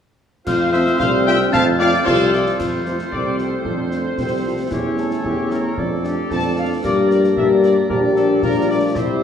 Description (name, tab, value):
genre	military-style march for wind band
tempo	113 BPM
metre	2/4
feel	straight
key	F major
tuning	A4 = 436 Hz
part	dark trumpet section	melody	0.5-9.2 s	G4 to A5	-25 LUFS	left 1 dB	none
part	clear woodwind section	second line	0.5-9.2 s	G4 to F5	-25 LUFS	equal	none
part	glockenspiel with rubber mallets	second line	0.5-2.6 s	C6 to A6	-26 LUFS	left 5 dB	none
part	mellow euphonium	second line	0.5-9.2 s	Bb3 to G4	-24 LUFS	right 1 dB	none
part	warm trombone section	sustained chords	0.5-9.2 s	G3 to E4	-26 LUFS	equal	none
part	warm tuba	bass	0.5-9.2 s	Bb1 to G2	-20 LUFS	equal	none
part	concert snare drum, clash cymbals and concert bass drum	drums	0.5-9.2 s	none	-29 LUFS	left 1 dB	none
part	mellow French horn section	accompaniment	0.7-9.2 s	G3 to A4	-23 LUFS	left 6 dB	none
room	wet scoring stage reverb, RT60 1.9 s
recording	small room reverb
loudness	-15 LUFS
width	side -8 dB against mid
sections	0.5-2.6 A section; 2.6-9.2 B section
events	none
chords	0.5 F; 4.7 A/E; 5.8 Dm/F; 6.8 Gm; 7.9 Gm/Bb